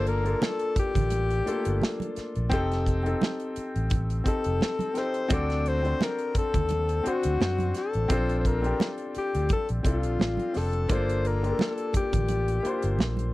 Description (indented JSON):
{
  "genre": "lush 1970s-style soul",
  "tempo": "86 BPM",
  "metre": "4/4",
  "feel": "swing 54% on 16ths",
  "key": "G minor",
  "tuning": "A4 = 440 Hz",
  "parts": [
    { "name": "breathy alto saxophone", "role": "melody", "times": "0.0-13.3 s", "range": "F4 to D5", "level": "-29 LUFS", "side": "left 3 dB", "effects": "none" },
    { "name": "clear baby grand piano", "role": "accompaniment", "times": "0.0-13.3 s", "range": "A3 to C5", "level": "-31 LUFS", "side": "left 1 dB", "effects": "none" },
    { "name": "fingered electric bass", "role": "bass", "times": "0.0-13.3 s", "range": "F1 to F#2", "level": "-28 LUFS", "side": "equal", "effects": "none" },
    { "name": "modern studio drum kit", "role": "drums", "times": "0.1-13.3 s", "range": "hi-hat, kick drum, snare drum", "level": "-28 LUFS", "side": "equal", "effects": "none" },
    { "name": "congas", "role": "percussion", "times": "0.4-13.3 s", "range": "none", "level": "-34 LUFS", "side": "right 5 dB", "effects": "none" }
  ],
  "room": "little or no reverb",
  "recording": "dry, close 1970s-style studio recording",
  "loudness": "-24 LUFS",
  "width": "side -18 dB against mid",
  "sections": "0.0-13.3 A section",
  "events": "none",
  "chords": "0.0 Gm7; 2.5 F7; 5.3 D7; 8.1 Bbmaj7; 10.9 Gm7"
}